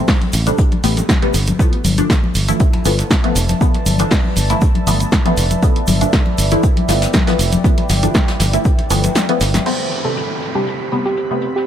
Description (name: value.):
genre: deep house.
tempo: 119 BPM.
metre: 4/4.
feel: straight.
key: unclear.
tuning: A4 = 440 Hz.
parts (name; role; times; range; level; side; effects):
filtered dub chord stab; stabs; 0.0-11.5 s; C3 to E4; -20 LUFS; left 1 dB; phaser, wide subtle chorus, sidechain pumping, analog delay.
electronic kick drum; drums; 0.1-8.8 s; none; -15 LUFS; equal; none.
jazz brush drum kit; drums; 0.1-11.7 s; hi-hat, snare drum; -29 LUFS; left 2 dB; sidechain pumping on hats, high-pass filter on hats, low-pass filter on hats, high-pass filter on snare, low-pass filter on snare, high-pass filter on room, low-pass filter on room.
punchy analog drum machine; drums; 0.1-9.8 s; crash cymbal, hi-hat, snare drum; -21 LUFS; right 1 dB; none.
congas; percussion; 0.1-9.6 s; none; -23 LUFS; left 5 dB; none.
egg shaker; percussion; 0.1-9.6 s; none; -29 LUFS; right 3 dB; none.
modern bright fingered electric bass; bass; 0.3-9.6 s; F1 to A1; -17 LUFS; equal; sidechain pumping.
deep dark ambient pad; sustained chords; 3.0-11.7 s; A3 to B5; -25 LUFS; right 2 dB; chorus, built-in reverb, sidechain pumping.
soft round pluck; melody; 9.7-11.7 s; G4 to C5; -21 LUFS; right 3 dB; chorus, tape echo.
downlifter; sound effects; 9.7-11.7 s; none; -25 LUFS; equal; none.
analog string pad; texture; 9.7-11.7 s; C4 to B5; -28 LUFS; left 1 dB; ensemble chorus, sidechain pumping.
room: little or no reverb.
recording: dry, gritty hardware recording.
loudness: -13 LUFS.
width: side -10 dB against mid.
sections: 0.0-9.7 A section; 9.7-11.7 B section.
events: kick drops out 9.2-9.7; drum fill 9.2-9.7.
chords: 0.0 Am9; 1.6 G13; 9.7 Am9.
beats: 0.08 0.58 1.09 | 1.59 2.10 2.60 3.11 | 3.61 4.12 4.62 5.12 | 5.63 6.13 6.64 7.14 | 7.64 8.15 8.65 9.16 | 9.66 10.16 10.67 11.17.